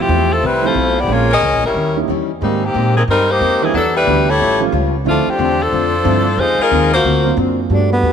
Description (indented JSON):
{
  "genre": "jazz, big band swing",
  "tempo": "181 BPM",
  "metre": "4/4",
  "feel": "swing 62% on 8ths",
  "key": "unclear",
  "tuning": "A4 = 437 Hz",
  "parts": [
    { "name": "warm saxophone section", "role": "melody", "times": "0.0-7.4 s", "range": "Eb3 to Eb5", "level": "-15 LUFS", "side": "left 2 dB", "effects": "slapback echo" },
    { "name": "warm grand piano", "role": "accompaniment", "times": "0.0-7.9 s", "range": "Eb3 to G4", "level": "-22 LUFS", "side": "right 15 dB", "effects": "none" },
    { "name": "upright bass", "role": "bass", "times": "0.0-8.1 s", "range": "Ab1 to Bb2", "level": "-19 LUFS", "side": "right 1 dB", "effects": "none" },
    { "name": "picked acoustic archtop guitar", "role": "accompaniment", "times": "0.1-8.1 s", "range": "F2 to Bb4", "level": "-22 LUFS", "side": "left 13 dB", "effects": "none" },
    { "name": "breathy tenor saxophone", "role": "melody", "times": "7.7-8.1 s", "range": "B3 to D4", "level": "-16 LUFS", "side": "right 1 dB", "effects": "slapback echo" },
    { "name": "clear trombone section", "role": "sustained chords", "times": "7.7-8.1 s", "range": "A3 to G4", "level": "-23 LUFS", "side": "right 2 dB", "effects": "none" }
  ],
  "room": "light reverb, small room ambience",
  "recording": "1960s-style stereo with parts hard left and right",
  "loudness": "-12 LUFS",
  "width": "side -7 dB against mid",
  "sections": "0.0-7.7 A section",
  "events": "none",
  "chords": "0.0 Fmaj7; 1.1 Bbm7; 1.7 Eb7b9; 2.4 Abmaj9; 3.7 Em7; 4.4 A7b13; 5.1 Dm7; 6.4 Fm7; 7.0 D7alt"
}